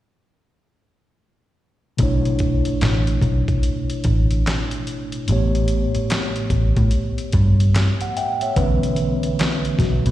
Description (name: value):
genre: R&B, neo-soul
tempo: 73 BPM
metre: 4/4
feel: swing 63% on 16ths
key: B minor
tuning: A4 = 439 Hz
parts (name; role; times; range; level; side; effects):
- mellow tine electric piano; accompaniment; 2.0-10.1 s; A2 to G5; -22 LUFS; equal; medium stereo tremolo, slapback echo
- vintage muted picked electric bass; bass; 2.0-10.1 s; A1 to B2; -18 LUFS; equal; none
- dusty soul sampler-style drum kit; drums; 2.0-10.1 s; handclaps, hi-hat, kick drum, snare drum; -23 LUFS; equal; none
room: digital ambience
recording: live gig heard through the venue's PA, recital hall reverb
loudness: -17 LUFS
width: side -14 dB against mid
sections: 2.0-8.6 A section; 8.6-10.1 B section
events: tine electric piano solo 8.6-10.1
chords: 2.0 Bm11; 5.3 A9; 8.6 Bm11